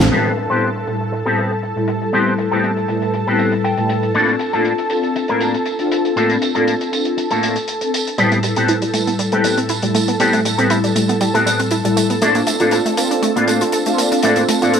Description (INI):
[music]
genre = nu-disco, nu disco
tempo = 119 BPM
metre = 4/4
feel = swing 54% on 16ths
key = A minor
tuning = A4 = 440 Hz
[part]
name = mellow synth brass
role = accompaniment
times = 0.0-14.8 s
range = A2 to B4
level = -19 LUFS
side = left 1 dB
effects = chorus, tape echo
[part]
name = lush unison pad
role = sustained chords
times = 0.0-14.8 s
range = A4 to A5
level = -23 LUFS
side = right 1 dB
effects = chorus
[part]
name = damped 70s drum kit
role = drums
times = 0.0-14.8 s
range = crash cymbal, hi-hat, snare drum, tambourine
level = -24 LUFS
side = equal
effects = low-pass filter on hats, small room ambience, low-pass filter on cymbals, low-pass filter on snare, low-pass filter on perc, low-pass filter on room
[part]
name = electric guitar with an envelope filter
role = riff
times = 0.1-14.8 s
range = A2 to G5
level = -19 LUFS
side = left 1 dB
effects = analog chorus, low-pass filter, tape echo
[part]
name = wide unison pluck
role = arpeggios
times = 8.2-14.8 s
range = G3 to A4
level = -20 LUFS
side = right 3 dB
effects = analog delay
[sound]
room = moderate plate reverb, RT60 0.9 s, small room ambience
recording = dry, gritty hardware recording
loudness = -14 LUFS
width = side -7 dB against mid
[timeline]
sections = 0.1-14.8 A section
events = band accent 0.0; filter sweep on drum 0.1-14.8; filter sweep on analog polysynth 0.1-14.8; clean electric guitar fill 3.4-4.2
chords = 0.1 Am9; 4.2 Bbmaj7/A; 8.2 Am9; 12.2 Bbmaj7/A